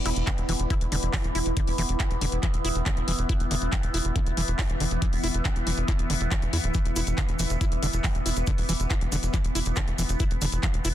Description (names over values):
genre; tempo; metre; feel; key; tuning
psychedelic trance; 139 BPM; 4/4; straight; unclear; A4 = 444 Hz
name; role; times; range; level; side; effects
overtone-sweeping drone; sustained chords; 0.0-10.9 s; E3 to B3; -33 LUFS; equal; chorus, built-in reverb, phaser, sidechain pumping
granular cloud pad; texture; 0.0-10.9 s; E4 to E5; -36 LUFS; right 1 dB; built-in reverb, sidechain pumping
overdriven acid bass; riff; 0.1-10.9 s; D3 to E4; -34 LUFS; equal; distortion, auto-pan, sidechain pumping, dub echo
tight sequencer bass; bass; 0.1-10.9 s; D1 to E2; -27 LUFS; equal; tube saturation
drum and bass drum kit; drums; 0.1-10.9 s; handclaps, hi-hat; -32 LUFS; left 2 dB; none
electronic kick drum; drums; 0.3-10.7 s; none; -26 LUFS; equal; none
cabasa; percussion; 6.7-10.9 s; none; -37 LUFS; right 5 dB; none
room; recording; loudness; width
little or no reverb; dense, heavily limited modern master; -23 LUFS; side -12 dB against mid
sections
0.0-10.9 A section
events
none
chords
0.0 E5